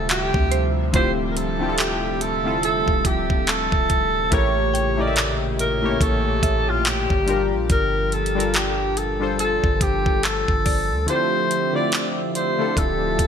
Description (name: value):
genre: contemporary R&B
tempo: 71 BPM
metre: 4/4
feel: swing 58% on 16ths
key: D minor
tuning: A4 = 438 Hz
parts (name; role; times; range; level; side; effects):
- breathy alto saxophone; melody; 0.0-13.3 s; F4 to D5; -23 LUFS; right 1 dB; none
- warm analog keys; accompaniment; 0.0-13.3 s; D3 to E5; -26 LUFS; left 4 dB; chorus
- chorused pulse-width pad; sustained chords; 0.0-13.3 s; Bb2 to E5; -28 LUFS; equal; none
- warm 808-style bass; bass; 0.0-13.3 s; D1 to D2; -26 LUFS; equal; none
- mallet-like synth pluck; texture; 0.0-11.5 s; C5 to G5; -32 LUFS; right 6 dB; chorus, ping-pong delay
- trap drum kit; drums; 0.1-13.3 s; handclaps, hi-hat, kick drum; -22 LUFS; equal; gated reverb
room: light reverb, digital ambience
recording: bright 1980s-style digital production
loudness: -18 LUFS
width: side -7 dB against mid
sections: 0.0-13.3 A section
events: kick muted 11.1-12.8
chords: 0.0 Dm11; 4.3 A7b9; 7.3 Gm7; 11.1 Dm11